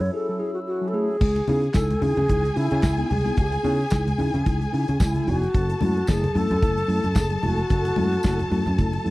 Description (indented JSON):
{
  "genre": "disco",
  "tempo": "111 BPM",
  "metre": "4/4",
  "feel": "swing 56% on 16ths",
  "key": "C# minor",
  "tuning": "A4 = 440 Hz",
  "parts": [
    { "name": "mellow hollow alto flute", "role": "melody", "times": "0.0-9.1 s", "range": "E4 to C#5", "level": "-26 LUFS", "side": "equal", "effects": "none" },
    { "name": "percussive tonewheel organ", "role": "sustained chords", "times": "0.0-1.2 s", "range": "F#3 to A4", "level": "-32 LUFS", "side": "right 1 dB", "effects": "overdrive, slow rotary speaker" },
    { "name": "fingered electric bass", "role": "bass", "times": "0.0-9.1 s", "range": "E#1 to C#3", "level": "-24 LUFS", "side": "equal", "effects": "none" },
    { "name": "mellow tine electric piano", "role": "accompaniment", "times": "0.1-9.1 s", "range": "C#3 to G#4", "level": "-29 LUFS", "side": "left 1 dB", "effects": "medium stereo tremolo" },
    { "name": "warm studio string section", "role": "second line", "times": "1.2-9.1 s", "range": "G#4 to A5", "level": "-30 LUFS", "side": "left 1 dB", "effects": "none" },
    { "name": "damped 70s drum kit", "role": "drums", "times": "1.2-9.1 s", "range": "crash cymbal, handclaps, hi-hat, kick drum, snare drum", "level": "-22 LUFS", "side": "equal", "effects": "none" },
    { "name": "congas", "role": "percussion", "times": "1.2-9.0 s", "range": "none", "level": "-31 LUFS", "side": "left 1 dB", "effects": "none" },
    { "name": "tambourine", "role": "percussion", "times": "1.7-8.4 s", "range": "none", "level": "-40 LUFS", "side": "right 4 dB", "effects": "none" }
  ],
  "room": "small room ambience",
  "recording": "dry, close 1970s-style studio recording, vinyl crackle",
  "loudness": "-20 LUFS",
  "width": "side -19 dB against mid",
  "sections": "0.0-1.2 A section; 1.2-9.1 B section",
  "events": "alto flute solo 0.0-1.2; break 0.1-1.2",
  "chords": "0.0 F#m7; 1.2 C#m7; 5.5 F#m7"
}